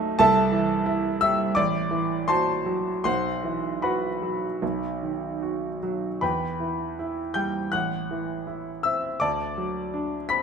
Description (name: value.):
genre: classical, romantic character piece for solo piano.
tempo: 74-92 BPM.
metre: 4/4.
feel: rubato.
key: unclear.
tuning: A4 = 440 Hz.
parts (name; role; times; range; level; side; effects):
clear concert grand piano; solo; 0.0-10.4 s; A1 to B6; -23 LUFS; right 1 dB; none.
room: wet large studio reverb, RT60 1.2 s.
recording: minimal, uncompressed stereo recording.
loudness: -23 LUFS.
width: side -6 dB against mid.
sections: 0.0-10.4 A section.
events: none.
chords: 0.2 C6; 1.6 F#m7b5/A; 3.0 Bsus4; 4.6 B; 6.2 Em; 7.7 Am; 9.2 D.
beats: | 0.19 0.87 1.56 2.28 | 3.04 3.83 4.62 5.42 | 6.22 6.98 7.72 8.47 | 9.21 9.93.